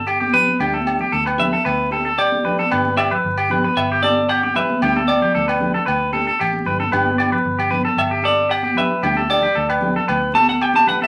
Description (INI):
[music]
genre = highlife guitar band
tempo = 114 BPM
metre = 4/4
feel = straight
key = G major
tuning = A4 = 445 Hz
[part]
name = semi-hollow electric guitar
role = melody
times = 0.0-11.1 s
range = A4 to A5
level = -21 LUFS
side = equal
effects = none
[part]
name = clean electric guitar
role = arpeggios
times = 0.0-11.1 s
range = G4 to D5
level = -22 LUFS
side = equal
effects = none
[part]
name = fingered electric bass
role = bass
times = 0.0-10.9 s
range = G1 to D2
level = -30 LUFS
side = equal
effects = none
[part]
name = agogo bells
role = percussion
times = 0.1-10.8 s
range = none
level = -28 LUFS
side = equal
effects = none
[part]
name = congas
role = percussion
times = 0.2-11.1 s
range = none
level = -27 LUFS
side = equal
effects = none
[part]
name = flamenco guitar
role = accompaniment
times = 0.3-11.0 s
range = G3 to G4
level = -30 LUFS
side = equal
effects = none
[sound]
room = moderate club reverb, RT60 0.6 s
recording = vinyl crackle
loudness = -18 LUFS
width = mono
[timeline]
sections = 0.0-11.1 A section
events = clean electric guitar solo 0.0-11.1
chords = 0.0 G; 0.6 Dsus4; 2.7 G; 9.0 Dsus4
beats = 0.07 | 0.60 1.13 1.66 2.19 | 2.71 3.24 3.77 4.29 | 4.82 5.35 5.88 6.40 | 6.93 7.46 7.98 8.51 | 9.04 9.56 10.09 10.62